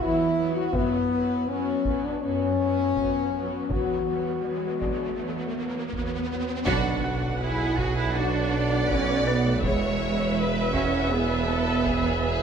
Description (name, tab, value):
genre	cinematic, hybrid orchestral and electronic film score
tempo	81 BPM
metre	4/4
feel	straight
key	B dorian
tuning	A4 = 440 Hz
part	rich studio viola section	accompaniment	0.0-12.4 s	F#3 to F#5	-32 LUFS	right 1 dB	none
part	clear French horn section	sustained chords	0.0-11.4 s	B3 to G#4	-26 LUFS	left 5 dB	none
part	warm symphonic cello section	bass	0.0-12.4 s	E2 to F#4	-29 LUFS	right 4 dB	none
part	taiko ensemble	drums	0.0-12.4 s	none	-34 LUFS	right 1 dB	none
part	warm grand piano	texture	0.0-12.4 s	D4 to A6	-39 LUFS	left 1 dB	ping-pong delay
part	riser and impact	sound effects	3.3-9.6 s	none	-36 LUFS	equal	none
part	warm studio violin section	second line	6.7-12.4 s	F#4 to D5	-30 LUFS	left 2 dB	none
part	rich symphonic double bass section	bass	6.7-12.4 s	B1 to E2	-30 LUFS	right 3 dB	none
part	snarling distorted saw bass	bass	6.7-12.4 s	E1 to B1	-34 LUFS	right 1 dB	distortion
part	warm tuba	bass	6.7-12.4 s	E1 to B1	-31 LUFS	right 3 dB	none
room	moderate scoring stage reverb, RT60 1.5 s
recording	none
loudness	-23 LUFS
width	side -7 dB against mid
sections	0.0-6.7 A section; 6.7-12.4 B section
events	riser 3.3-6.7; band accent 6.7-7.4; impact 6.7-9.6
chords	0.0 Esus2; 0.7 F#sus4; 3.7 Esus2; 6.7 Bm; 9.6 E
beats	0.00 | 0.74 1.48 2.23 2.97 | 3.71 4.45 5.19 5.93 | 6.67 7.41 8.15 8.89 | 9.63 10.37 11.11 11.86